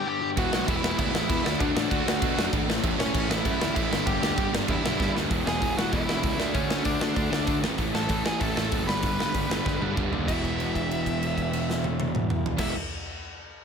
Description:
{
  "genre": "punk rock",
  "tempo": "194 BPM",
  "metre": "4/4",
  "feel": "straight",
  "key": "unclear",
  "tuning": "A4 = 440 Hz",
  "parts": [
    { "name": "smooth overdriven lead guitar", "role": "melody", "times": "0.0-12.7 s", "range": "C#4 to B5", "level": "-31 LUFS", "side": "equal", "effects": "ping-pong delay" },
    { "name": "biting overdriven guitar", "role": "riff", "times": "0.0-12.7 s", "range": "E2 to D4", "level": "-31 LUFS", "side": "left 13 dB", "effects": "none" },
    { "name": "overdriven semi-hollow guitar", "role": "riff", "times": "0.4-12.7 s", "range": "G2 to F#4", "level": "-30 LUFS", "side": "right 15 dB", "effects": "none" },
    { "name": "fuzz picked electric bass", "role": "bass", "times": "0.4-12.7 s", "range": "E1 to B2", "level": "-32 LUFS", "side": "equal", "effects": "overdrive" },
    { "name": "big rock drum kit", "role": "drums", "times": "0.4-12.7 s", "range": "crash cymbal, hi-hat, kick drum, snare drum, toms", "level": "-28 LUFS", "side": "equal", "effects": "none" }
  ],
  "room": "light reverb",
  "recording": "none",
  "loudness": "-23 LUFS",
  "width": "side -6 dB against mid",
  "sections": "0.0-5.3 A section; 5.3-10.3 B section; 10.3-12.8 C section",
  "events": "drum fill 5.0-5.3, 9.7-10.3; held note 10.3-12.6",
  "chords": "0.4 E; 1.4 D; 2.7 A; 3.9 G; 5.3 E; 6.4 D; 7.6 A; 8.9 G; 10.3 E",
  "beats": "0.07 | 0.37 0.68 0.99 1.29 | 1.60 1.91 2.22 2.53 | 2.83 3.14 3.45 3.76 | 4.07 4.38 4.68 4.99 | 5.30 5.61 5.92 6.23 | 6.54 6.85 7.16 7.47 | 7.78 8.09 8.40 8.72 | 9.03 9.34 9.65 9.96 | 10.28 10.59 10.90 11.21 | 11.52 11.84 12.15 12.46"
}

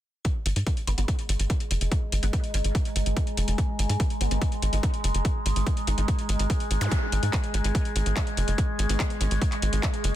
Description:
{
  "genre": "psychedelic trance",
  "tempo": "144 BPM",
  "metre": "4/4",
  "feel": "straight",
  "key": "unclear",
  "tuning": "A4 = 441 Hz",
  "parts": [
    { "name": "overtone-sweeping drone", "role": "sustained chords", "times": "1.0-10.2 s", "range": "G#3", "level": "-33 LUFS", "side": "equal", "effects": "chorus, built-in reverb, sidechain pumping" },
    { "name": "electronic kick drum", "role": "drums", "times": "0.2-9.9 s", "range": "none", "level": "-26 LUFS", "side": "equal", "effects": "none" },
    { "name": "techno drum kit", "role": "drums", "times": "0.2-10.1 s", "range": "handclaps, hi-hat", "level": "-33 LUFS", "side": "left 1 dB", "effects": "none" },
    { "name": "warbly tape-like pad", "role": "texture", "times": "1.0-10.2 s", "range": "G#4 to C#6", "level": "-39 LUFS", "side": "right 2 dB", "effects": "chorus, built-in reverb, phaser, sidechain pumping" },
    { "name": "tight sequencer bass", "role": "bass", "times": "0.5-10.1 s", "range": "F#1 to G#2", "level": "-25 LUFS", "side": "equal", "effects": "none" },
    { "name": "resonant blip pluck", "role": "second line", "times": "0.9-9.5 s", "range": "B3 to D#4", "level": "-41 LUFS", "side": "left 2 dB", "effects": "phaser, ensemble chorus, sidechain pumping, high-pass filter, dub echo" },
    { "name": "zap", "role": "sound effects", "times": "6.8-6.9 s", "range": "none", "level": "-36 LUFS", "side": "equal", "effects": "none" }
  ],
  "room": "little or no reverb",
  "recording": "dense, heavily limited modern master",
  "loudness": "-23 LUFS",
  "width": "side -13 dB against mid",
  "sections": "0.2-10.2 A section",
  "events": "fade-in on ambient pad 0.2-10.2",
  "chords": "0.2 G#5",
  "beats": "| 0.25 0.67 1.08 1.50 | 1.92 2.33 2.75 3.17 | 3.58 4.00 4.42 4.83 | 5.25 5.67 6.08 6.50 | 6.92 7.33 7.75 8.17 | 8.58 9.00 9.42 9.83"
}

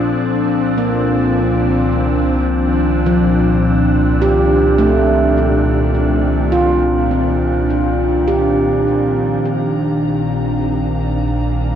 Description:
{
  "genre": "ambient",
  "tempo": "52 BPM",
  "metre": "4/4",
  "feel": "straight",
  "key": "unclear",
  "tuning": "A4 = 441 Hz",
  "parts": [
    { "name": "evolving wavetable pad", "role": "sustained chords", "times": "0.0-11.8 s", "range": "Bb2 to A4", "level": "-16 LUFS", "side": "equal", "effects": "chorus, built-in reverb, shimmer reverb" },
    { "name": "handpan", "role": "arpeggios", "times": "0.0-11.8 s", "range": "F3 to G4", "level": "-18 LUFS", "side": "right 1 dB", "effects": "ping-pong delay, shimmer reverb" },
    { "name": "warm sub bass", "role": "bass", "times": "0.0-11.8 s", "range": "Bb1 to C2", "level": "-20 LUFS", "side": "equal", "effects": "none" },
    { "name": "hand-pumped harmonium", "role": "drone", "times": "0.0-11.8 s", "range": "Bb2", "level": "-25 LUFS", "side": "equal", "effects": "stereo widening" },
    { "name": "dark studio violin section", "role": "texture", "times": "9.5-11.8 s", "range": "Bb3 to Bb5", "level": "-34 LUFS", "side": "left 1 dB", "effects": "shimmer reverb" }
  ],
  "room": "wet concert hall reverb, RT60 2.2 s",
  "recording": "worn, warbling old tape, cassette tape, warbly pitch drift",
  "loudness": "-13 LUFS",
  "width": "side -9 dB against mid",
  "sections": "0.0-9.4 A section; 9.4-11.8 B section",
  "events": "none",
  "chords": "0.2 Cm11; 9.4 Ebmaj7/Bb",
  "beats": "| 0.21 1.34 2.48 3.63 | 4.78 5.93 7.09 8.27 | 9.45 10.62"
}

